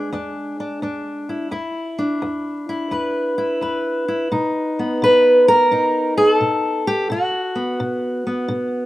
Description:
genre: acoustic country blues, solo or duo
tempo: 86 BPM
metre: 4/4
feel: swing 66% on 8ths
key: E mixolydian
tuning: A4 = 440 Hz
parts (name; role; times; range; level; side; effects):
- fingerpicked steel-string acoustic guitar; solo; 0.0-8.9 s; E2 to B4; -17 LUFS; equal; none
room: little or no reverb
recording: recorded outdoors, with no room sound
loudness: -17 LUFS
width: side -16 dB against mid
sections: 0.0-8.9 A section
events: none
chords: 0.0 E7; 4.3 B7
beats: 0.12 0.82 | 1.52 2.22 2.92 3.62 | 4.32 5.02 5.71 6.41 | 7.11 7.80 8.50

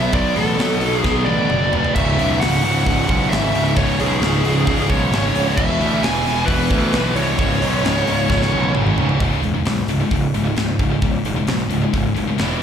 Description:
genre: heavy metal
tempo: 132 BPM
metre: 4/4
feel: straight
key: C# phrygian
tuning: A4 = 440 Hz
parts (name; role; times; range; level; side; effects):
- high-gain lead guitar; melody; 0.0-8.7 s; G#4 to G#5; -22 LUFS; right 1 dB; distortion, slapback echo, digital delay
- bright symphonic string section; sustained chords; 0.0-9.2 s; none; barely audible; none; none
- heavy high-gain guitar; riff; 0.0-12.6 s; C#2 to B3; -23 LUFS; left 11 dB; distortion
- sludgy distorted guitar; riff; 0.0-9.2 s; C#2 to B3; -25 LUFS; equal; none
- tight distorted guitar; riff; 0.0-12.6 s; C#2 to B3; -24 LUFS; right 12 dB; distortion
- fuzz picked electric bass; bass; 0.0-12.5 s; C#1 to D2; -21 LUFS; equal; overdrive
- tight metal drum kit; drums; 0.1-12.5 s; crash cymbal, hi-hat, kick drum, snare drum, toms; -23 LUFS; equal; none
room: little or no reverb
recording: live gig heard through the venue's PA, club reverb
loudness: -15 LUFS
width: side -8 dB against mid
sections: 0.0-9.2 A section; 9.2-12.6 B section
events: drum fill 1.1-2.0, 8.3-9.2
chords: 0.0 D; 2.0 C#m; 5.6 E; 7.4 C#m; 9.2 C#5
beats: | 0.14 0.60 1.05 1.50 | 1.96 2.41 2.86 3.32 | 3.77 4.22 4.67 5.13 | 5.58 6.03 6.49 6.94 | 7.39 7.84 8.30 8.75 | 9.21 9.66 10.12 10.57 | 11.03 11.48 11.94 12.39

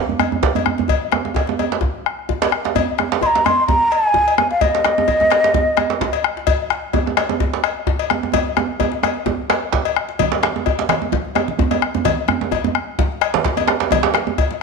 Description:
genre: west african traditional, West African drum ensemble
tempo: 129 BPM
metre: 4/4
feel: swing 54% on 16ths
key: unclear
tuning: A4 = 440 Hz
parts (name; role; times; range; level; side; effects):
- djembe; percussion; 0.1-14.6 s; none; -26 LUFS; left 5 dB; none
- djembe; percussion; 0.1-14.4 s; none; -21 LUFS; right 10 dB; none
- bombo; percussion; 0.2-14.5 s; none; -22 LUFS; left 3 dB; none
- cowbell; percussion; 0.2-14.5 s; none; -23 LUFS; left 12 dB; none
- breathy hollow bansuri; melody; 3.2-6.2 s; Eb5 to C6; -15 LUFS; equal; none
- congas; percussion; 10.2-14.6 s; none; -27 LUFS; right 10 dB; none
room: wet echo chamber reverb, RT60 1.3 s, small room ambience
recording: 1960s-style stereo with parts hard left and right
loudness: -16 LUFS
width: side -4 dB against mid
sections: 0.0-10.2 A section; 10.2-14.6 B section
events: drum fill 8.3-10.2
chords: none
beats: 0.43 | 0.89 1.36 1.82 2.29 | 2.75 3.22 3.68 4.15 | 4.61 5.08 5.54 6.01 | 6.47 6.94 7.40 7.87 | 8.33 8.80 9.26 9.73 | 10.20 10.66 11.12 11.59 | 12.05 12.52 12.98 13.45 | 13.91 14.38

